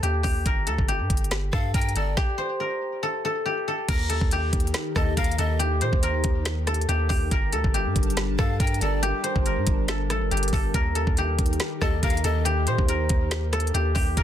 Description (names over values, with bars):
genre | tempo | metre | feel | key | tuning
hip hop, trap | 140 BPM | 4/4 | half-time | unclear | A4 = 441 Hz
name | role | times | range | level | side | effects
guzheng | melody | 0.0-14.2 s | G4 to C5 | -27 LUFS | left 1 dB | tape echo
long sustained 808-style bass | bass | 0.0-14.2 s | G1 to Bb2 | -26 LUFS | equal | none
trap drum kit | drums | 0.0-14.2 s | crash cymbal, hi-hat, kick drum, rim click, snare drum | -25 LUFS | equal | none
breathy pan flute | second line | 1.5-2.2, 5.0-5.6, 8.4-9.0, 11.8-12.4 s | D5 to G5 | -36 LUFS | left 5 dB | tape echo
airy breathy pad | sustained chords | 3.9-14.2 s | Eb3 to A5 | -32 LUFS | left 2 dB | chorus
room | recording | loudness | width
little or no reverb | dense, heavily limited modern master | -22 LUFS | side -10 dB against mid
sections
0.0-3.9 A section; 3.9-14.2 B section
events
stop 2.2-3.9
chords
0.5 Gm; 3.9 Eb; 7.3 Gmadd9; 10.7 Eb